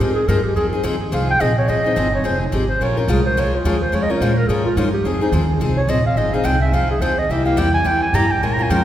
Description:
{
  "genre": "acoustic string swing (jazz manouche)",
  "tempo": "214 BPM",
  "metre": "4/4",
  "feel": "swing 59% on 8ths",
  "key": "F minor",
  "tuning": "A4 = 440 Hz",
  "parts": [
    { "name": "breathy clarinet", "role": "melody", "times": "0.0-8.8 s", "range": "Eb4 to Bb5", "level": "-20 LUFS", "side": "right 1 dB", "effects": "none" },
    { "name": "picked steel-string acoustic guitar", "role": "accompaniment", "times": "0.0-8.8 s", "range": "C3 to Bb4", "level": "-21 LUFS", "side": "left 2 dB", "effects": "none" },
    { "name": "upright bass", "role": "bass", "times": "0.0-8.8 s", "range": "F1 to Bb2", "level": "-20 LUFS", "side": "equal", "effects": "none" }
  ],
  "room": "wet church reverb, RT60 2.7 s",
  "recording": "recorded in a church or concert hall",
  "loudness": "-16 LUFS",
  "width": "side -12 dB against mid",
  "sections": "0.0-8.8 A section",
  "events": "clarinet solo 0.0-8.8",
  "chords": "0.0 Fm7; 2.8 Bbm7; 5.0 Fm7; 7.3 C7",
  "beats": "0.00 0.28 | 0.56 0.84 1.12 1.40 | 1.68 1.96 2.24 2.52 | 2.80 3.08 3.36 3.64 | 3.92 4.20 4.48 4.76 | 5.04 5.33 5.61 5.89 | 6.17 6.45 6.73 7.01 | 7.29 7.57 7.85 8.13 | 8.41 8.69"
}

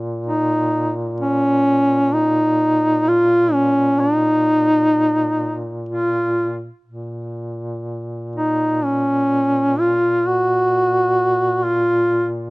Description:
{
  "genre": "caucasian folk, Caucasian lament",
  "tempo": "free time",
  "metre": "none",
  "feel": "none",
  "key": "Bb minor",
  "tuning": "A4 = 439 Hz",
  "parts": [
    { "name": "dark duduk", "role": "drone", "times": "0.0-12.5 s", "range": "Bb2", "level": "-26 LUFS", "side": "equal", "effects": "none" },
    { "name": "warm duduk", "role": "melody", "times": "0.3-12.3 s", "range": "Db4 to Gb4", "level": "-16 LUFS", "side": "equal", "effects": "none" }
  ],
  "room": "little or no reverb",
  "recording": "recorded outdoors, with no room sound, nothing above 10.6 kHz",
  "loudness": "-15 LUFS",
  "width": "side -24 dB against mid",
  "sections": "0.0-12.5 A section",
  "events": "none",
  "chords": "none",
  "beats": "free time"
}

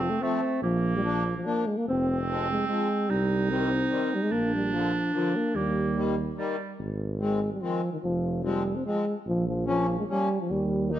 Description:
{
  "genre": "alpine folk, alpine dance band",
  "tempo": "146 BPM",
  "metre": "3/4",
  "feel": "straight",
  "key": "Eb major, Ab major from 6.8 s",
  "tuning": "A4 = 439 Hz",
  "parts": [
    { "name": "dark euphonium", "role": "melody", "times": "0.0-11.0 s", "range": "Eb3 to C4", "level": "-27 LUFS", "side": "equal", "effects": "none" },
    { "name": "bright clarinet", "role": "second line", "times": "0.0-6.8 s", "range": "G3 to Eb4", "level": "-30 LUFS", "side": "right 3 dB", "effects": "none" },
    { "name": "mellow tuba", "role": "bass", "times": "0.0-11.0 s", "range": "F1 to Eb2", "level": "-31 LUFS", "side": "right 1 dB", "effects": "none" },
    { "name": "accordion", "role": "accompaniment", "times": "0.2-11.0 s", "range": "D3 to Eb4", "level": "-32 LUFS", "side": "left 5 dB", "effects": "none" }
  ],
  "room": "light reverb",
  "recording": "dark, warm production",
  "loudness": "-25 LUFS",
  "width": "side -12 dB against mid",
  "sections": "0.0-6.8 A section; 6.8-11.0 B section",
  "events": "none",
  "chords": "0.0 F; 0.6 Bb; 1.9 Fm; 3.1 Cm; 4.3 Bb; 5.5 Eb; 6.8 Ab; 8.0 Fm; 9.3 Bbm",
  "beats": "0.21 | 0.62 1.04 1.45 | 1.86 2.28 2.69 | 3.10 3.50 3.91 | 4.32 4.73 5.13 | 5.54 5.95 6.37 | 6.78 7.20 7.61 | 8.02 8.43 8.85 | 9.26 9.67 10.09 | 10.50 10.92"
}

